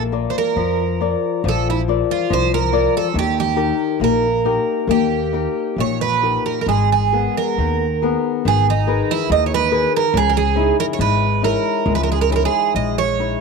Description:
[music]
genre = fado-style ballad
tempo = 69 BPM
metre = 2/4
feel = uneven beats, rubato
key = G# harmonic minor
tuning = A4 = 437 Hz
[part]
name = picked twelve-string acoustic guitar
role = melody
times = 0.0-13.4 s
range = D#4 to D#5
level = -19 LUFS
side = right 11 dB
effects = none
[part]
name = flamenco guitar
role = accompaniment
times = 0.0-13.4 s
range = A#2 to D5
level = -21 LUFS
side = left 14 dB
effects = none
[part]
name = upright bass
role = bass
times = 0.0-13.3 s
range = G#1 to E#2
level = -21 LUFS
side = left 1 dB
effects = none
[sound]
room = moderate spring reverb, RT60 1.7 s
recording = 1960s-style stereo with parts hard left and right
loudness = -16 LUFS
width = side -4 dB against mid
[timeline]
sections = 0.0-13.4 A section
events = none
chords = 0.0 A#; 3.1 D#; 6.7 G#madd9; 10.1 C#madd9

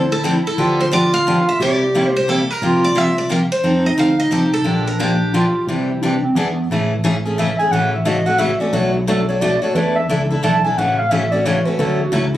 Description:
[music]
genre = acoustic string swing (jazz manouche)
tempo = 177 BPM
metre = 3/4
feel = swing 62% on 8ths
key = A major from 6.7 s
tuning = A4 = 440 Hz
[part]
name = picked steel-string acoustic guitar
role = melody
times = 0.0-6.3 s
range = G4 to F5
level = -21 LUFS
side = right 1 dB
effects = none
[part]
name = breathy clarinet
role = second line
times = 0.0-12.4 s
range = B3 to A5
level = -19 LUFS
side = right 1 dB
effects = none
[part]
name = fretless electric bass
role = bass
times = 0.0-12.4 s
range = A1 to F2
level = -22 LUFS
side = right 1 dB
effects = none
[part]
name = picked steel-string acoustic guitar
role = accompaniment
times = 0.2-12.4 s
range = B2 to A4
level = -19 LUFS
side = left 2 dB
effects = none
[sound]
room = light reverb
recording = recorded on a phone in the room, studio ambience, compression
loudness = -14 LUFS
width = side -13 dB against mid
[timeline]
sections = 0.0-6.7 A section; 6.7-12.4 B section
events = clarinet solo 6.7-12.4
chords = 0.0 Dm7; 0.6 G7/D; 1.6 C7; 2.6 C7sus4; 3.6 F7; 4.7 Bb6; 5.7 Cadd9; 6.4 E7; 6.7 Amaj7; 7.7 F#m7/A; 8.7 Bm7; 9.8 E7sus4; 10.8 A6; 11.8 Dmaj7

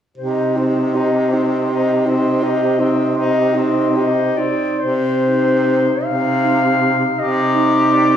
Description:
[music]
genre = classical, lyrical piece for single-reed quartet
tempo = 46-56 BPM (dotted quarters)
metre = 12/8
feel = rubato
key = C minor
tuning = A4 = 440 Hz
[part]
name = warm clarinet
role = melody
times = 0.2-8.2 s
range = C5 to F5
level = -21 LUFS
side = left 4 dB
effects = none
[part]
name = warm alto saxophone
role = second line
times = 0.2-8.2 s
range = Eb4 to G4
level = -20 LUFS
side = right 4 dB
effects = none
[part]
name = clear tenor saxophone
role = accompaniment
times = 0.2-8.2 s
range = C4 to G4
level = -19 LUFS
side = left 3 dB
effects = none
[part]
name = bright baritone saxophone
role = bass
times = 0.2-8.2 s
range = C3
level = -19 LUFS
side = right 1 dB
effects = none
[sound]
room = wet recital hall reverb, RT60 1.3 s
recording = recorded in a church or concert hall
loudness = -14 LUFS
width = side -9 dB against mid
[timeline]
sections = 0.2-4.8 A section; 4.8-8.2 B section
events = none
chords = 0.2 Cm

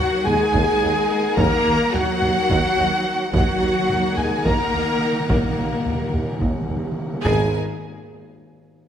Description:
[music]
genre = cinematic, epic orchestral film score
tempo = 214 BPM (eighths)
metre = 7/8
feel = straight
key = unclear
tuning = A4 = 445 Hz
[part]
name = rich symphonic violin section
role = melody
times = 0.0-7.6 s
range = A#4 to A#5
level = -28 LUFS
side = left 1 dB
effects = none
[part]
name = mellow hollow concert flute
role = second line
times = 0.0-7.6 s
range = A#4 to A#5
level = -28 LUFS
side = left 1 dB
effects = none
[part]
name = rich symphonic violin section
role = second line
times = 0.0-7.6 s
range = A#4 to A#5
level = -30 LUFS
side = equal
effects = none
[part]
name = rich symphonic viola section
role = accompaniment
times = 0.0-7.6 s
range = A#3 to A#4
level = -28 LUFS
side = right 1 dB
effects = none
[part]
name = dark French horn section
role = sustained chords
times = 0.0-7.5 s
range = A#3 to A#4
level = -25 LUFS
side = left 3 dB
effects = none
[part]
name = warm symphonic string section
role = sustained chords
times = 0.0-7.6 s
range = A#3 to G#5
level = -28 LUFS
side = left 1 dB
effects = none
[part]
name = warm symphonic cello section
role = bass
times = 0.0-7.6 s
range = A#2 to A#3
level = -27 LUFS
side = right 2 dB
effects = none
[part]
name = timpani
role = percussion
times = 0.0-0.2, 3.3-7.5 s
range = G#2 to D#3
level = -29 LUFS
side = equal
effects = none
[part]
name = warm chamber double bass section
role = bass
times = 0.3-7.6 s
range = G#1 to D#2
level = -28 LUFS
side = right 3 dB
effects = none
[part]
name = warm tuba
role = bass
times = 0.3-7.5 s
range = G#1 to D#2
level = -29 LUFS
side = right 2 dB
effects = none
[part]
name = taiko ensemble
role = drums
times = 0.3-7.4 s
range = none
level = -25 LUFS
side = equal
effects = none
[sound]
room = moderate scoring stage reverb, RT60 1.9 s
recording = none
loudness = -18 LUFS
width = side -9 dB against mid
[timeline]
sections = 0.0-7.2 A section; 7.2-8.9 B section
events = timpani fill 3.3-7.2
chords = 0.0 D#m; 7.2 G#madd9

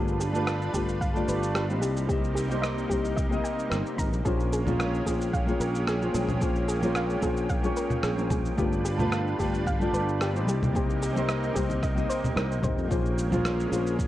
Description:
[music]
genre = sunset chillout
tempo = 111 BPM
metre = 4/4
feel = straight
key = Bb dorian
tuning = A4 = 444 Hz
[part]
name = nylon-string guitar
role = accompaniment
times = 0.0-13.9 s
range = A3 to Eb5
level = -30 LUFS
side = left 1 dB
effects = auto-pan, digital delay
[part]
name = lush unison pad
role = sustained chords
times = 0.0-14.1 s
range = C3 to B4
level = -34 LUFS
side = equal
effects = chorus
[part]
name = soft round pluck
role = arpeggios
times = 0.0-12.9 s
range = G4 to Bb5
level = -35 LUFS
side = equal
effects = chorus, digital delay
[part]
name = sustaining fretless electric bass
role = bass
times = 0.0-14.1 s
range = G1 to F2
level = -30 LUFS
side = equal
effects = tube saturation
[part]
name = electronic shaker, rim click and congas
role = drums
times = 0.1-14.1 s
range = none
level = -34 LUFS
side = equal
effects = studio reverb
[part]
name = electronic kick drum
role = drums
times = 0.7-14.1 s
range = none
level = -30 LUFS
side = equal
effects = studio reverb
[part]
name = wind-like tuned noise texture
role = texture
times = 4.6-12.9 s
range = G5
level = -42 LUFS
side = right 4 dB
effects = built-in reverb
[part]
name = congas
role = percussion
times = 4.7-13.4 s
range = none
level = -36 LUFS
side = left 2 dB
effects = none
[sound]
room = light reverb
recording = worn, warbling old tape, cassette tape, warbly pitch drift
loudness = -24 LUFS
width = side -14 dB against mid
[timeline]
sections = 0.0-12.9 A section; 12.9-14.1 A section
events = none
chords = 0.0 G7; 1.8 Cm7; 4.3 Bbm7; 8.6 G7; 10.5 Cm7; 12.9 Bbm7

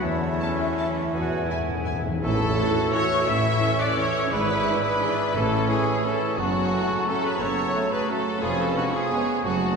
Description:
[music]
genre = classical, orchestral ballroom waltz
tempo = 154-190 BPM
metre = 3/4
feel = rubato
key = A major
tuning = A4 = 439 Hz
[part]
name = mellow cor anglais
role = second line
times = 0.0-9.8 s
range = B4 to A5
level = -34 LUFS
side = right 2 dB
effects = none
[part]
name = mellow hollow silver concert flute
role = second line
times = 0.0-9.8 s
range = E5 to E6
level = -34 LUFS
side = left 4 dB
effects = none
[part]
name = warm clarinet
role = second line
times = 0.0-9.8 s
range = C#4 to C#5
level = -32 LUFS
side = left 1 dB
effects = none
[part]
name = warm symphonic violin section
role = second line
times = 0.0-9.2 s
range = A3 to E5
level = -39 LUFS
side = left 2 dB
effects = none
[part]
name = warm bassoon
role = accompaniment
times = 0.0-9.8 s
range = E3 to C#4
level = -32 LUFS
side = right 1 dB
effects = none
[part]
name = mellow French horn section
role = sustained chords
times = 0.0-9.2 s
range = E3 to B4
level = -39 LUFS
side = left 2 dB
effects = none
[part]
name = concert harp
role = arpeggios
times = 0.0-9.8 s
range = E#2 to A5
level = -35 LUFS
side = left 3 dB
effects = none
[part]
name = clear trumpet section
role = stabs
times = 0.0-9.8 s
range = A3 to E5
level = -28 LUFS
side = right 2 dB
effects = none
[part]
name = clear symphonic double bass section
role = bass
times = 0.0-9.7 s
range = E#1 to E2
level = -31 LUFS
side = right 2 dB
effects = none
[part]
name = warm symphonic cello section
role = bass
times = 0.0-9.7 s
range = E#2 to E3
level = -32 LUFS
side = right 1 dB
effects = none
[part]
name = clear chamber violin section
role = melody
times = 0.4-9.8 s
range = F#4 to A5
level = -30 LUFS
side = left 4 dB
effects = none
[part]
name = clear symphonic viola section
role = accompaniment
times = 0.4-9.8 s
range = A3 to F#4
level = -32 LUFS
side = right 2 dB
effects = none
[part]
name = timpani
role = percussion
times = 1.1-2.7, 5.3-5.8 s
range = E2 to A2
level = -32 LUFS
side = left 1 dB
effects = none
[part]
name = bright trombone section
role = sustained chords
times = 2.6-9.2 s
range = C#3 to A3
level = -37 LUFS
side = right 4 dB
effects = none
[sound]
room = wet cathedral reverb, RT60 4.7 s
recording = recorded in a church or concert hall, nothing above 10.4 kHz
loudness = -21 LUFS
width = side -5 dB against mid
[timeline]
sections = 0.0-2.2 A section; 2.2-9.8 B section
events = timpani fill 1.1-2.2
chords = 0.0 A/E; 1.1 E; 2.2 A; 4.3 E7/G#; 5.3 A; 6.4 F#m; 8.4 C#7/E#

